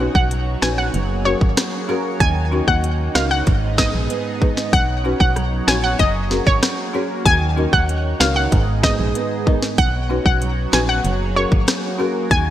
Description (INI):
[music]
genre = dancehall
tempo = 95 BPM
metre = 4/4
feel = straight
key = unclear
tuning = A4 = 441 Hz
[part]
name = folk marimba with medium mallets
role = accompaniment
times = 0.0-12.1 s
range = Cb4 to C#5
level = -26 LUFS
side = left 2 dB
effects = sidechain pumping
[part]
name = warm analog pad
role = sustained chords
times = 0.0-12.5 s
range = Bb3 to Eb5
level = -28 LUFS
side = equal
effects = chorus, sidechain pumping
[part]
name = nylon-string guitar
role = arpeggios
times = 0.0-12.5 s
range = Ab2 to Bb4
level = -26 LUFS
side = right 5 dB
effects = ensemble chorus
[part]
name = organ-like FM bass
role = bass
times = 0.0-12.5 s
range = Gb1 to Eb2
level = -21 LUFS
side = equal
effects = none
[part]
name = downlifter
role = sound effects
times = 0.0-2.2 s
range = none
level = barely audible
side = none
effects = none
[part]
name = analog pluck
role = melody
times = 0.1-12.5 s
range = Db5 to Ab5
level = -22 LUFS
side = equal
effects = chorus, digital delay
[part]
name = island pop drum kit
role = drums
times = 0.1-12.5 s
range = hi-hat, kick drum, rim click, snare drum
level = -19 LUFS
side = equal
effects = overdrive, gated reverb
[sound]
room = light reverb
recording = bright 1980s-style digital production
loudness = -16 LUFS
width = side -12 dB against mid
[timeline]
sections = 0.0-12.5 A section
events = none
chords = 0.0 Badd9; 0.9 Gbadd9; 2.2 Ebm7; 3.5 Abm; 4.7 Badd9; 6.0 Gbadd9; 7.3 Ebm7; 8.5 Abm; 9.8 Badd9; 11.0 Gbadd9